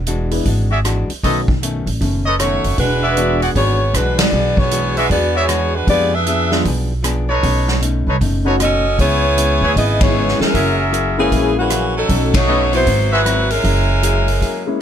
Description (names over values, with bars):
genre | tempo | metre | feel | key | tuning
jazz, big band swing | 155 BPM | 4/4 | swing 64% on 8ths | unclear | A4 = 440 Hz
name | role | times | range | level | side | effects
upright bass | bass | 0.0-14.4 s | E1 to F2 | -18 LUFS | right 1 dB | none
archtop guitar, miked and amplified | accompaniment | 0.1-14.7 s | G#2 to Ab4 | -25 LUFS | left 4 dB | none
swinging big-band drum kit | drums | 0.1-14.5 s | hi-hat, kick drum, ride cymbal, rim click, snare drum | -21 LUFS | equal | none
warm concert grand piano | accompaniment | 0.3-14.8 s | F#3 to D#5 | -21 LUFS | left 2 dB | none
warm trumpet section | stabs | 0.7-13.2 s | D#4 to F#5 | -19 LUFS | equal | none
warm saxophone section | melody | 2.4-14.8 s | E3 to E5 | -17 LUFS | equal | none
room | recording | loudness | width
little or no reverb | none | -14 LUFS | side -9 dB against mid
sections
0.0-14.8 A section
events
band accent 4.1, 10.0, 12.3; break 14.4-14.8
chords
0.0 E9; 1.2 B9; 2.8 E9; 5.9 Fdim7; 7.4 B9; 9.0 C#m7; 10.5 F#9; 12.1 B9; 12.9 G#7alt; 13.6 F#9